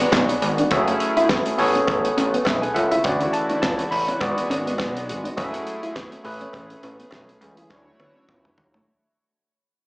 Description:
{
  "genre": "early-eighties boogie funk",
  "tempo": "103 BPM",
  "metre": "4/4",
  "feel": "swing 56% on 16ths",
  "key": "unclear",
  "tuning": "A4 = 440 Hz",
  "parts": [
    { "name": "overdriven tine electric piano", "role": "accompaniment", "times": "0.0-8.8 s", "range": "C#3 to B5", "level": "-24 LUFS", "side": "equal", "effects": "none" },
    { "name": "chorused pulse-width pad", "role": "sustained chords", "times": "0.0-8.9 s", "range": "C#3 to C#5", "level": "-29 LUFS", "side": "equal", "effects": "none" },
    { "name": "mellow electric guitar", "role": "riff", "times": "0.0-8.8 s", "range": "A3 to E4", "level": "-25 LUFS", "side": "equal", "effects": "analog chorus, slapback echo" },
    { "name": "chorused synth bass", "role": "bass", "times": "0.0-8.8 s", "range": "F#1 to D#2", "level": "-27 LUFS", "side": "equal", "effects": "none" },
    { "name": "damped 70s drum kit", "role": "drums", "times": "0.0-8.9 s", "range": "handclaps, hi-hat, kick drum, snare drum, toms", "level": "-26 LUFS", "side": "equal", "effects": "none" },
    { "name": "cowbell", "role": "percussion", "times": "0.1-8.4 s", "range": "none", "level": "-30 LUFS", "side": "equal", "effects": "slapback echo" },
    { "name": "mellow synth brass", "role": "second line", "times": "6.5-7.7 s", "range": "E3 to G#4", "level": "-54 LUFS", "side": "equal", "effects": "chorus, slapback echo" }
  ],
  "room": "light reverb, small room ambience",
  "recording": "live gig heard through the venue's PA, club reverb, small speaker sound",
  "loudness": "-19 LUFS",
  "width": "side -32 dB against mid",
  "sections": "0.0-8.9 A section",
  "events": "fade-out 0.0-8.9; tine electric piano fill 2.5-4.2; band accent 6.5-8.9; drum fill 7.7-8.9",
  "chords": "0.0 G#m7b5; 0.7 F#m9; 1.6 Amaj9; 3.0 Dmaj9; 4.2 G#m7b5; 5.4 F#m9; 6.2 Amaj9; 7.7 Dmaj9"
}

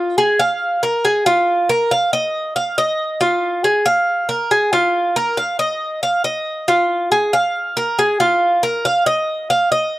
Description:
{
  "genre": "latin",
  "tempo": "138 BPM",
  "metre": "4/4",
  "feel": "straight",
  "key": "unclear",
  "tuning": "A4 = 441 Hz",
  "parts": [
    { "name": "Cuban tres", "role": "solo", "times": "0.0-10.0 s", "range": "F4 to F5", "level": "-15 LUFS", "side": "equal", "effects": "none" }
  ],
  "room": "studio ambience",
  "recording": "dry, close 1970s-style studio recording",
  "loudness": "-15 LUFS",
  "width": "side -17 dB against mid",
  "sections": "0.0-10.0 A section",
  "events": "none",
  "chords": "none"
}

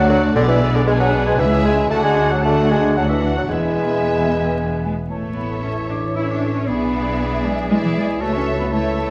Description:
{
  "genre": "quick classical-period movement for symphony orchestra",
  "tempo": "115 BPM",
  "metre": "3/4",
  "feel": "straight",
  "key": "A major",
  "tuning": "A4 = 440 Hz",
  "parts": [
    { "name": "warm studio violin section", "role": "melody", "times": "0.0-9.1 s", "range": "B4 to F#5", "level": "-31 LUFS", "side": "equal", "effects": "none" },
    { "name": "clear oboe", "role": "second line", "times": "0.0-9.1 s", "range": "G#4 to A5", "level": "-31 LUFS", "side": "equal", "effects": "none" },
    { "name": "mellow hollow silver concert flute", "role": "second line", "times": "0.0-9.1 s", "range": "D5 to E6", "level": "-30 LUFS", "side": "equal", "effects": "none" },
    { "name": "warm studio violin section", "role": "second line", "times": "0.0-9.1 s", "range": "F#4 to D5", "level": "-33 LUFS", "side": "equal", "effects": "none" },
    { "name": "warm bassoon", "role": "accompaniment", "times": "0.0-9.1 s", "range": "D3 to A3", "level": "-24 LUFS", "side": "equal", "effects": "none" },
    { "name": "warm studio viola section", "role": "accompaniment", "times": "0.0-9.1 s", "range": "A3 to A4", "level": "-31 LUFS", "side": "equal", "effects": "none" },
    { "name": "mellow French horn section", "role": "sustained chords", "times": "0.0-9.1 s", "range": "B3 to D5", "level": "-31 LUFS", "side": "equal", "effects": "none" },
    { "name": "rich studio cello section", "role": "bass", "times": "0.0-9.1 s", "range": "C#2 to E4", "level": "-24 LUFS", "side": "equal", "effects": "none" },
    { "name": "warm studio double bass section", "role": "bass", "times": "0.0-9.1 s", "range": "E1 to D2", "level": "-26 LUFS", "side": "equal", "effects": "none" },
    { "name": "warm clarinet", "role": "second line", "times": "5.6-9.1 s", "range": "C#4 to F#4", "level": "-30 LUFS", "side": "equal", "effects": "none" }
  ],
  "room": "wet scoring stage reverb, RT60 1.6 s",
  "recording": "worn, warbling old tape, cassette tape, vinyl crackle, warbly pitch drift",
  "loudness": "-18 LUFS",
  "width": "mono",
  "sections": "0.0-5.1 A section; 5.1-9.1 B section",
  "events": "none",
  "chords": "0.4 G#dim/B; 1.4 C#m; 1.9 D; 3.5 E; 5.1 A; 6.7 E7/B; 8.2 A/C#"
}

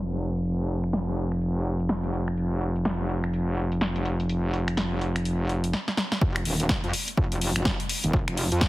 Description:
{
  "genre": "bass house",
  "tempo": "125 BPM",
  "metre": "4/4",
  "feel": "swing 60% on 16ths",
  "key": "unclear",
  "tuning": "A4 = 440 Hz",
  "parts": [
    { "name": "metallic wobble bass", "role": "bass", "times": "0.0-8.7 s", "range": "Eb1 to F2", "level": "-26 LUFS", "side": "equal", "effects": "chorus, tube saturation, sidechain pumping" },
    { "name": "house drum kit", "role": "drums", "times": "0.1-8.7 s", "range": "finger snaps, hi-hat, snare drum", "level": "-29 LUFS", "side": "equal", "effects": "low-pass filter on hats, low-pass filter on snare" },
    { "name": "electronic kick drum", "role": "drums", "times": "6.2-8.7 s", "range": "none", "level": "-27 LUFS", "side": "equal", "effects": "none" }
  ],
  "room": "light reverb, digital ambience",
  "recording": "heavily compressed radio sound, multiband compression, low-pass filter",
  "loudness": "-24 LUFS",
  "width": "side -18 dB against mid",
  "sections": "0.0-6.2 A section; 6.2-8.7 B section",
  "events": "filter sweep on drum 0.0-6.2; filter sweep 0.0-6.2; drum fill 5.7-6.2; drop 6.2-8.7",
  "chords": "none"
}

